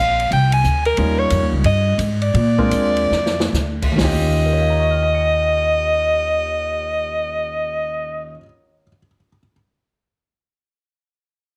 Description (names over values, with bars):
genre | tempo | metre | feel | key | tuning
jazz, small-group swing and bop | 128-182 BPM | 4/4 | swing 64% on 8ths | Eb mixolydian | A4 = 440 Hz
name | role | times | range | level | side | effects
breathy soprano saxophone | melody | 0.0-8.4 s | Bb4 to Ab5 | -21 LUFS | equal | none
upright bass | bass | 0.0-8.3 s | Bb1 to Bb2 | -22 LUFS | equal | none
open jazz drum kit | drums | 0.2-4.1 s | crash cymbal, hi-hat, kick drum, ride cymbal, snare drum | -27 LUFS | equal | none
clear grand piano | accompaniment | 1.0-9.5 s | Eb2 to Db7 | -26 LUFS | equal | none
room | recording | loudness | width
moderate large studio reverb, RT60 1.1 s | heavily compressed radio sound | -18 LUFS | mono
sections
0.0-4.0 A section; 4.0-7.8 B section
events
slowing down 1.0-4.0; drum fill 3.1-3.5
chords
0.0 Bb7; 1.0 Eb7; 2.3 Bb7; 4.0 Eb9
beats
0.31 0.64 | 0.97 1.30 1.64 1.99 | 2.35 2.72 3.12 3.54 | 3.99 4.46 4.93 5.40 | 5.87 6.34 6.81 7.28